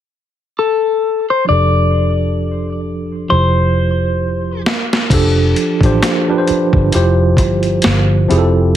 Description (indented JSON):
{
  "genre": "R&B, neo-soul",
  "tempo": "66 BPM",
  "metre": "4/4",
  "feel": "swing 58% on 16ths",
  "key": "F major",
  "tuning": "A4 = 441 Hz",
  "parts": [
    { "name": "clean electric guitar", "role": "melody", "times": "0.6-4.6 s", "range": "A4 to D5", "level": "-16 LUFS", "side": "left 4 dB", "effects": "phaser, plate reverb" },
    { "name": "tine electric piano", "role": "accompaniment", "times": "1.4-8.8 s", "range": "F3 to C5", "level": "-16 LUFS", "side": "right 2 dB", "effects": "overdrive, fast stereo tremolo, plate reverb" },
    { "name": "vintage muted fingered electric bass", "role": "bass", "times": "1.5-8.8 s", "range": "F1 to A1", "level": "-15 LUFS", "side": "equal", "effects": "none" },
    { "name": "boom bap sampler-style drum kit", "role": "drums", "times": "4.7-8.5 s", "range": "crash cymbal, hi-hat, kick drum, snare drum", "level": "-16 LUFS", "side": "equal", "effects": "none" }
  ],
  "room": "moderate small room ambience, RT60 0.5 s",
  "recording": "heavily compressed radio sound",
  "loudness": "-12 LUFS",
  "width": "side -11 dB against mid",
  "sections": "0.0-1.5 A section; 1.5-5.1 B section; 5.1-8.8 C section",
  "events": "drum fill 3.3-5.1",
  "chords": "0.0 N.C.; 1.5 F69; 3.3 Cadd11/F; 4.7 N.C.; 5.1 F69; 6.9 Cadd11/F"
}